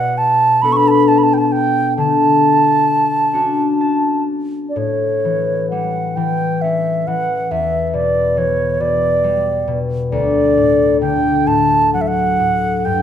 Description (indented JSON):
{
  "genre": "celtic folk, Celtic slow air",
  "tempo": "42-46 BPM (dotted quarters)",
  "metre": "6/8",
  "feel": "rubato",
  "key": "A mixolydian",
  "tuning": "A4 = 439 Hz",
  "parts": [
    { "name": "baroque flute", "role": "melody", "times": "0.0-13.0 s", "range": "C#5 to C#6", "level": "-15 LUFS", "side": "right 3 dB", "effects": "none" },
    { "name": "concert harp", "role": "accompaniment", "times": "0.0-13.0 s", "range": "D2 to A5", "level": "-17 LUFS", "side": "left 5 dB", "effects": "none" }
  ],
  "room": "moderate recital hall reverb, RT60 1.4 s",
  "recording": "minimal, uncompressed stereo recording",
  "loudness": "-13 LUFS",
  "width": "side -9 dB against mid",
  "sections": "0.0-4.8 A section; 4.8-13.0 B section",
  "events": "harp fill 3.3-4.8",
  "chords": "0.0 Bm7; 2.0 Dmaj7; 4.8 A7; 7.5 Em; 10.1 D"
}